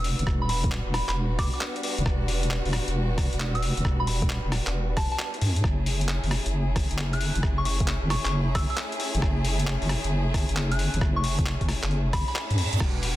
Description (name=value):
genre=UK garage, two-step garage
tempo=134 BPM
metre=4/4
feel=swing 66% on 16ths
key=unclear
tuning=A4 = 439 Hz
part: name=soft synth bell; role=melody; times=0.0-12.5 s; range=A5 to F#6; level=-34 LUFS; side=equal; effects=chorus, ping-pong delay
part: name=rich chamber violin section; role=sustained chords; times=0.0-13.2 s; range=G3 to G#4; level=-34 LUFS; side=equal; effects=sidechain pumping
part: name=deep soft wobble bass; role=bass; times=0.0-13.2 s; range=E1 to F#2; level=-26 LUFS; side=equal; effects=chorus
part: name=boom bap sampler-style drum kit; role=drums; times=0.0-13.1 s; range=crash cymbal, handclaps, hi-hat, rim click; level=-31 LUFS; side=left 1 dB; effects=overdrive, soft clipping on snare
part: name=electronic kick drum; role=drums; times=0.3-12.9 s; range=none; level=-27 LUFS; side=equal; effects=overdrive
part: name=reverse cymbal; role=sound effects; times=12.1-12.8 s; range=none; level=-35 LUFS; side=right 6 dB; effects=none
room=digital ambience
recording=dense, heavily limited modern master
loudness=-23 LUFS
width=side -15 dB against mid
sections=0.0-13.2 A section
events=reverse cymbal 12.1-12.8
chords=0.0 Em9; 5.4 F#m9